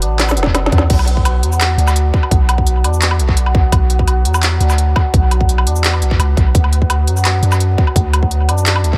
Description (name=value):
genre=half-time drum and bass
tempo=170 BPM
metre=4/4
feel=half-time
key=B minor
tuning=A4 = 441 Hz
part: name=santur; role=arpeggios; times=0.0-9.0 s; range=F#3 to B4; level=-24 LUFS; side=equal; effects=dub echo
part: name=long sustained 808-style bass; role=bass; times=0.0-9.0 s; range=E1 to F#2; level=-16 LUFS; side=equal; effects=none
part: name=organic electronic drum kit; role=drums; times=0.0-8.9 s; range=crash cymbal, handclaps, hi-hat, shaker, snare drum, woodblock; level=-21 LUFS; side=equal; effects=dub echo
part: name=electronic kick drum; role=drums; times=0.5-9.0 s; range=none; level=-17 LUFS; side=equal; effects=none
room=light reverb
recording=echo-heavy mix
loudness=-14 LUFS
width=mono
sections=0.9-9.0 A section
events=drum fill 0.2-0.9; drop 0.9-9.0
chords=0.0 E5; 0.9 Bm; 6.5 D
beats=0.19 0.55 | 0.90 1.25 1.61 1.96 | 2.31 2.66 3.02 3.37 | 3.72 4.08 4.43 4.78 | 5.13 5.49 5.84 6.19 | 6.55 6.90 7.25 7.61 | 7.96 8.31 8.66